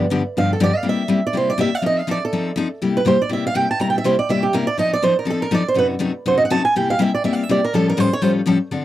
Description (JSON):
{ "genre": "jazz", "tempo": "244 BPM", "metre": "4/4", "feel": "swing 56% on 8ths", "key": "C mixolydian", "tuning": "A4 = 440 Hz", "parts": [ { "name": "picked steel-string acoustic guitar", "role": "accompaniment", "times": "0.0-8.8 s", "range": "F#2 to A4", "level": "-19 LUFS", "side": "left 3 dB", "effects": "none" }, { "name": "picked swing-style acoustic guitar", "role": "melody", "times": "0.4-8.3 s", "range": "G4 to Bb5", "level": "-19 LUFS", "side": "right 3 dB", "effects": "none" } ], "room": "light reverb", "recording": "dry, close 1970s-style studio recording", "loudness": "-16 LUFS", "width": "side -13 dB against mid", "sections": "0.8-8.8 A section", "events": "steel-string acoustic guitar solo 0.0-8.8", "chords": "0.0 G7; 0.8 C7; 1.8 F7; 2.8 C7; 4.8 F7; 5.8 F#dim7; 6.8 C7; 7.7 Aaug7", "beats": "0.11 0.36 0.60 | 0.85 1.09 1.34 1.58 | 1.83 2.08 2.32 2.57 | 2.81 3.06 3.30 3.55 | 3.80 4.04 4.29 4.54 | 4.78 5.03 5.27 5.52 | 5.77 6.01 6.26 6.50 | 6.75 7.00 7.24 7.49 | 7.73 7.98 8.22 8.47 | 8.72" }